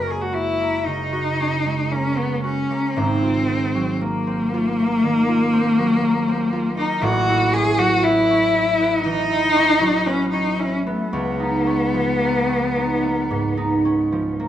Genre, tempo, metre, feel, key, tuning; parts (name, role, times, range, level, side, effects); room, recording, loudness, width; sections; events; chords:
classical, impressionist duo for cello and harp; 54-61 BPM; 4/4; rubato; F# mixolydian; A4 = 440 Hz
warm cello; melody; 0.0-14.4 s; A3 to A#4; -19 LUFS; left 1 dB
concert harp; accompaniment; 0.0-14.5 s; F#1 to F#4; -22 LUFS; right 2 dB
moderate recital hall reverb, RT60 1.4 s; close, detailed microphones; -17 LUFS; side -11 dB against mid
0.0-14.5 A section
0.0 F#add9; 3.0 G#13; 7.0 A69; 11.1 C#13